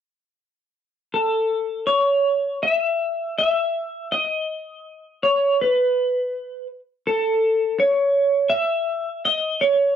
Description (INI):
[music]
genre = rock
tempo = 81 BPM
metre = 4/4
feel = straight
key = unclear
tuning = A4 = 444 Hz
[part]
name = electric guitar through a small old amp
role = melody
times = 1.1-10.0 s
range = A4 to E5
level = -19 LUFS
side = equal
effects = analog chorus, slapback echo
[sound]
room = light reverb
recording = dark, warm production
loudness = -19 LUFS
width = side -9 dB against mid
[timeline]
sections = 1.2-10.0 A section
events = none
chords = none